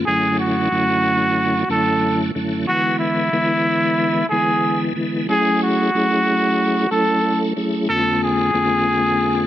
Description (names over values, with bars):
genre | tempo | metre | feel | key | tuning
hip hop | 92 BPM | 4/4 | swing 63% on 16ths | F# minor | A4 = 441 Hz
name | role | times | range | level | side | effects
tonewheel organ | accompaniment | 0.0-9.5 s | E#2 to A4 | -19 LUFS | equal | overdrive, chorus vibrato, fast rotary speaker, high-pass filter, low-pass filter
trumpet with straight mute | melody | 0.1-9.5 s | E4 to A4 | -19 LUFS | equal | high-pass filter, low-pass filter
room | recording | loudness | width
moderate echo chamber reverb, RT60 1.3 s, studio reverb | none | -16 LUFS | side -12 dB against mid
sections
0.0-5.3 A section; 5.3-9.5 A section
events
none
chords
0.1 Dmaj9/F#; 2.7 E7; 5.3 F#m9; 7.9 C#7b9b13/E#